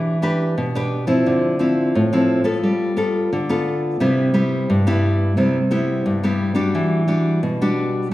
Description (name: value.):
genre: samba.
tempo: 88 BPM.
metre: 4/4.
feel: straight.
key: E minor.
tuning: A4 = 440 Hz.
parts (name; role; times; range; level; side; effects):
nylon-string guitar; solo; 0.0-8.1 s; G2 to B4; -17 LUFS; equal; none.
room: wet recital hall reverb, RT60 1.5 s.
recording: recorded in a church or concert hall.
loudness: -17 LUFS.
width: side -16 dB against mid.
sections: 0.0-8.1 A section.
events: none.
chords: 0.0 Em7; 1.3 Dm9; 2.6 G9; 4.0 Cmaj7; 6.7 Em9.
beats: 0.58 | 1.26 1.95 2.63 3.32 | 4.00 4.69 5.38 6.06 | 6.75 7.43 8.12.